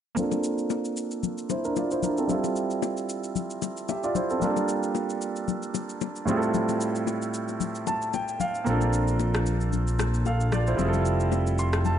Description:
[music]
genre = amapiano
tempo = 113 BPM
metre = 4/4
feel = swing 55% on 16ths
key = unclear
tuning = A4 = 441 Hz
[part]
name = clear concert grand piano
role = accompaniment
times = 0.1-12.0 s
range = A2 to C6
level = -26 LUFS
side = right 2 dB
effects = low-pass filter
[part]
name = electronic shaker and rim click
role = drums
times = 0.2-12.0 s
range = none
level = -36 LUFS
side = left 1 dB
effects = none
[part]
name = congas and bongos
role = percussion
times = 0.2-12.0 s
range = none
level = -32 LUFS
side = left 12 dB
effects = none
[part]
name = fat analog bass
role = bass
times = 8.7-12.0 s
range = F1 to Bb1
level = -24 LUFS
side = equal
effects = none
[sound]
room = light reverb, small room ambience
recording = nothing above 10.4 kHz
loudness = -24 LUFS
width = side -9 dB against mid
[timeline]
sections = 0.2-12.0 A section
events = filter sweep on grand piano 0.2-12.0; grand piano fill 7.6-8.7, 11.3-12.0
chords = 0.2 Bbmaj9; 2.3 Fmaj7; 4.4 Gm9; 6.3 Fmaj9/A; 8.7 Bbmaj9; 10.8 Fmaj7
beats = | 0.17 0.70 1.23 1.76 | 2.29 2.83 3.36 3.89 | 4.42 4.95 5.48 6.01 | 6.54 7.07 7.60 8.13 | 8.67 9.20 9.73 10.26 | 10.79 11.32 11.85

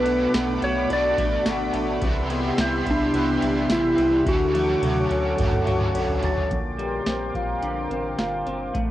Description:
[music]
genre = dream pop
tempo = 107 BPM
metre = 4/4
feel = straight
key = unclear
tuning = A4 = 445 Hz
[part]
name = clean lap steel guitar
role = melody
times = 0.0-5.9 s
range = D4 to D5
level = -24 LUFS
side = equal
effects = cassette tape, analog delay, plate reverb
[part]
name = overdriven electric guitar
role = accompaniment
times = 0.0-6.5 s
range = B2 to F#4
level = -30 LUFS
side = right 3 dB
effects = harmonic tremolo, ensemble chorus, cassette tape, plate reverb
[part]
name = lush unison pad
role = sustained chords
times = 0.0-8.9 s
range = A3 to D6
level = -30 LUFS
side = equal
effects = chorus, cassette tape, plate reverb
[part]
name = electric guitar through a small old amp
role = arpeggios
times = 0.0-8.9 s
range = Bb2 to F#4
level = -26 LUFS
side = left 2 dB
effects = lush chorus, cassette tape, analog delay, plate reverb
[part]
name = round analog bass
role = bass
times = 0.0-8.9 s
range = G1 to D2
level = -32 LUFS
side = equal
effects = none
[part]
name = booming analog drum machine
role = drums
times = 0.1-8.9 s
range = hi-hat, kick drum, ride cymbal, snare drum, tambourine, toms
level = -26 LUFS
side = equal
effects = overdrive, cassette tape
[part]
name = glockenspiel with rubber mallets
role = texture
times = 2.6-6.8 s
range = F#6 to B6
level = -36 LUFS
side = right 2 dB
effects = cassette tape, analog delay
[sound]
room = wet booth ambience, RT60 0.3 s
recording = home recording on cassette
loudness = -20 LUFS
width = side -14 dB against mid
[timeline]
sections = 0.0-6.5 A section; 6.5-8.9 B section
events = drum fill 4.3-6.5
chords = 0.0 Bm7; 2.0 Cmaj7; 4.3 Dmaj7; 6.5 Bb69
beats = 0.34 0.90 1.46 | 2.02 2.58 3.14 3.70 | 4.26 4.82 5.38 5.94 | 6.50 7.06 7.62 8.19 | 8.75

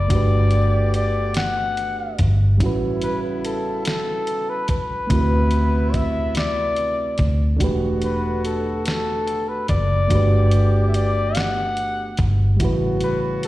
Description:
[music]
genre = slow six-eight R&B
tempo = 48 BPM (dotted quarters)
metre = 6/8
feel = straight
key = unclear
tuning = A4 = 441 Hz
[part]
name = warm flugelhorn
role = melody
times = 0.0-13.5 s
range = A4 to F#5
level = -24 LUFS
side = left 2 dB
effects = slapback echo
[part]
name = reed electric piano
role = accompaniment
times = 0.0-13.5 s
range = C#3 to B4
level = -26 LUFS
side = right 2 dB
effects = slapback echo
[part]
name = vintage muted fingered electric bass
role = bass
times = 0.0-13.5 s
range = E1 to D2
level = -20 LUFS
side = equal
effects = none
[part]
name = warm horn section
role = stabs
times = 0.1-13.5 s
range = C3 to G4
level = -32 LUFS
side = left 2 dB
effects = slapback echo
[part]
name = dusty soul sampler-style drum kit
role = drums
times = 0.1-13.5 s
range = hi-hat, kick drum, snare drum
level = -24 LUFS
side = equal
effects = none
[sound]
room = digital ambience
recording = live gig heard through the venue's PA, recital hall reverb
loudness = -18 LUFS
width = side -16 dB against mid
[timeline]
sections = 0.0-13.5 A section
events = none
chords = 0.1 Gmaj7; 2.6 A13; 5.1 D13; 7.6 Em11; 10.1 Gmaj7; 12.6 A13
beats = | 0.10 1.35 | 2.60 3.85 | 5.10 6.35 | 7.60 8.85 | 10.10 11.35 | 12.60

